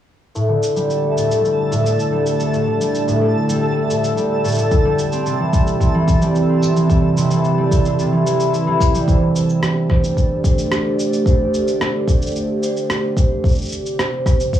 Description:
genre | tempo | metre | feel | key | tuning
folktronica | 110 BPM | 4/4 | straight | unclear | A4 = 439 Hz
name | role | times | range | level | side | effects
warbly tape-like pad | sustained chords | 0.3-14.6 s | C3 to E5 | -23 LUFS | right 1 dB | chorus, built-in reverb, phaser, cassette tape, plate reverb
twinkling granular texture | texture | 1.0-9.1 s | A4 to A5 | -27 LUFS | equal | built-in reverb, cassette tape, plate reverb
concert harp | arpeggios | 0.4-11.1 s | A2 to E4 | -17 LUFS | equal | low-pass filter, cassette tape, analog delay, plate reverb
electronic shaker and rim click | drums | 0.4-14.6 s | none | -27 LUFS | right 1 dB | none
electronic kick drum | drums | 4.7-14.6 s | none | -16 LUFS | equal | none
vibraphone with soft mallets | second line | 9.1-14.6 s | C5 | -24 LUFS | right 2 dB | cassette tape, tape echo, plate reverb
room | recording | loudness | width
moderate studio reverb, RT60 0.6 s | home recording on cassette, vinyl crackle, small room reverb | -15 LUFS | side -11 dB against mid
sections
0.4-9.1 A section; 9.1-14.6 B section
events
filter sweep on harp 0.4-9.1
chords
0.4 Dsus4; 4.7 C; 9.1 Dsus4; 13.4 C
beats
| 0.35 0.90 1.44 1.99 | 2.54 3.08 3.63 4.17 | 4.72 5.26 5.81 6.35 | 6.90 7.44 7.99 8.54 | 9.08 9.63 10.17 10.72 | 11.26 11.81 12.35 12.90 | 13.44 13.99 14.54

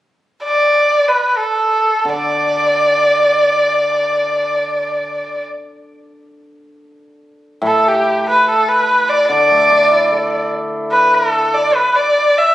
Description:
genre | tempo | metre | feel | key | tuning
chinese traditional, Chinese chamber ensemble | free time | none | none | D zhi mode | A4 = 441 Hz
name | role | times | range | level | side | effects
warm erhu | melody | 0.4-12.5 s | G4 to E5 | -12 LUFS | equal | none
hammered dulcimer | accompaniment | 2.0-11.7 s | A2 to A4 | -22 LUFS | equal | none
room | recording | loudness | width
moderate recital hall reverb, RT60 1.7 s | recorded on a phone in the room, studio ambience, compression | -12 LUFS | side -14 dB against mid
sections
0.0-7.6 A section; 7.6-12.5 B section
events
none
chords
none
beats
free time

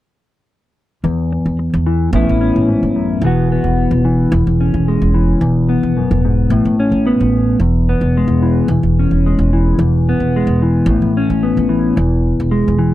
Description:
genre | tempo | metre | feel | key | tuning
highlife guitar band | 110 BPM | 4/4 | swing 55% on 16ths | E major | A4 = 440 Hz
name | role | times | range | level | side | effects
mellow electric guitar | accompaniment | 1.0-12.9 s | E2 to F#4 | -14 LUFS | left 2 dB | analog chorus
upright bass | bass | 1.0-12.9 s | E1 to E2 | -16 LUFS | right 1 dB | none
room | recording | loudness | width
light reverb | dry, close 1970s-style studio recording | -12 LUFS | side -14 dB against mid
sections
1.0-12.9 A section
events
none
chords
1.0 N.C.; 2.1 Aadd9; 3.2 Esus2; 4.3 C#m/E; 5.4 Eadd9; 6.5 Aadd9; 7.6 E; 8.7 C#m/E; 9.8 E; 10.9 Aadd9; 12.0 E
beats
| 1.05 1.59 2.14 2.68 | 3.23 3.78 4.32 4.87 | 5.41 5.96 6.50 7.05 | 7.60 8.14 8.69 9.23 | 9.78 10.33 10.87 11.42 | 11.96 12.51

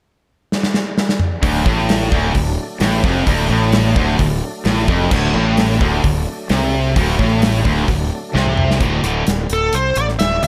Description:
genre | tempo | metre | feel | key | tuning
hard rock | 130 BPM | 4/4 | straight | D mixolydian | A4 = 444 Hz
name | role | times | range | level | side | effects
gated 80s drum kit | drums | 0.5-10.5 s | crash cymbal, hi-hat, kick drum, snare drum, toms | -21 LUFS | equal | none
overdriven tonewheel organ | sustained chords | 1.4-8.8 s | F#3 to D4 | -32 LUFS | equal | none
crunchy overdriven guitar | riff | 1.4-9.2 s | D2 to D3 | -23 LUFS | equal | none
distorted electric guitar | riff | 1.4-8.8 s | D2 to C3 | -25 LUFS | equal | overdrive
scooped high-gain guitar | riff | 1.4-9.2 s | D2 to D3 | -24 LUFS | equal | distortion
fuzz fingered electric bass | bass | 1.4-10.5 s | D1 to D2 | -22 LUFS | equal | overdrive
high-gain lead guitar | melody | 9.5-10.5 s | A4 to F#5 | -19 LUFS | equal | distortion
room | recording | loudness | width
light reverb | none | -17 LUFS | mono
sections
0.0-1.4 A section; 1.4-8.8 B section; 8.8-10.5 C section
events
drum fill 0.5-1.4, 8.3-8.8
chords
0.0 N.C.; 1.4 D; 8.8 D5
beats
0.04 0.51 0.97 | 1.43 1.89 2.35 2.81 | 3.28 3.74 4.20 4.66 | 5.12 5.58 6.04 6.50 | 6.96 7.42 7.89 8.35 | 8.81 9.27 9.73 10.19

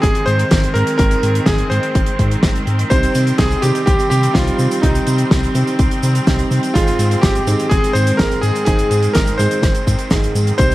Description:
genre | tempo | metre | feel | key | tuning
italo disco | 125 BPM | 4/4 | straight | unclear | A4 = 440 Hz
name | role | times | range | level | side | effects
bright electric grand piano | melody | 0.0-10.7 s | Eb4 to C5 | -20 LUFS | equal | digital delay
bright symphonic string section | sustained chords | 0.0-10.7 s | Eb3 to C4 | -22 LUFS | equal | none
round analog bass | bass | 0.0-10.7 s | Ab1 to C3 | -18 LUFS | equal | none
damped 70s drum kit | drums | 0.0-10.7 s | cabasa, hi-hat, snare drum | -22 LUFS | equal | small room reverb
electronic kick drum | drums | 0.0-10.7 s | none | -17 LUFS | equal | small room reverb
warm grand piano | stabs | 2.9-10.7 s | Ab2 to Ab4 | -22 LUFS | right 2 dB | none
room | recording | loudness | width
light reverb, small room ambience | vinyl crackle | -13 LUFS | side -17 dB against mid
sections
0.0-10.7 A section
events
none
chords
0.0 Ab; 2.9 Cm; 6.8 Ab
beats
0.03 0.51 | 0.99 1.47 1.95 2.43 | 2.91 3.39 3.87 4.35 | 4.83 5.31 5.79 6.27 | 6.75 7.23 7.71 8.19 | 8.67 9.15 9.63 10.11 | 10.59

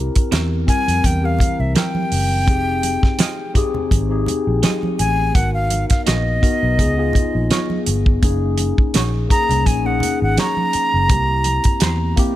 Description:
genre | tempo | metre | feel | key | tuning
lush 1970s-style soul | 84 BPM | 4/4 | swing 54% on 16ths | F minor | A4 = 439 Hz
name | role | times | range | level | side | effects
mellow tine electric piano | accompaniment | 0.0-12.4 s | E3 to Bb4 | -22 LUFS | left 3 dB | phaser
vintage muted fingered electric bass | bass | 0.0-12.1 s | F1 to F2 | -20 LUFS | equal | none
damped 70s drum kit | drums | 0.2-12.4 s | hi-hat, kick drum, snare drum | -18 LUFS | equal | none
electric guitar through a small old amp | riff | 0.3-12.0 s | Bb3 to E5 | -27 LUFS | right 7 dB | tremolo
congas | percussion | 0.3-12.0 s | none | -28 LUFS | right 3 dB | none
reedy concert flute | melody | 0.7-12.2 s | Eb5 to Bb5 | -21 LUFS | equal | none
room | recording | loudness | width
little or no reverb | none | -15 LUFS | side -14 dB against mid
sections
0.0-12.4 A section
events
flute solo 0.0-12.4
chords
0.0 C7; 2.5 Fm7; 5.4 Abm7; 6.8 Db7; 8.2 Gb6; 11.1 C7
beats
0.33 1.04 1.76 | 2.48 3.20 3.92 4.64 | 5.36 6.07 6.79 7.51 | 8.23 8.95 9.66 10.38 | 11.10 11.82

